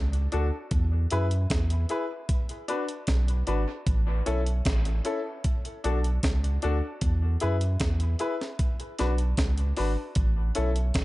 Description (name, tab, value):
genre	dub reggae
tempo	76 BPM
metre	4/4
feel	straight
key	A major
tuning	A4 = 440 Hz
part	warm sub bass	bass	0.0-11.0 s	G#1 to F#2	-25 LUFS	equal	none
part	breakbeat sampler-style drum kit	drums	0.1-11.0 s	hi-hat, kick drum, snare drum	-28 LUFS	equal	none
part	warm upright piano	stabs	0.3-10.7 s	C#4 to B4	-32 LUFS	left 3 dB	dub echo
room	light reverb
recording	nothing above 10.7 kHz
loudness	-24 LUFS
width	side -18 dB against mid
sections	0.0-11.0 A section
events	none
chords	0.0 D; 0.7 E; 2.3 Bm; 3.9 A; 5.4 D; 7.0 E; 8.6 Bm; 10.2 A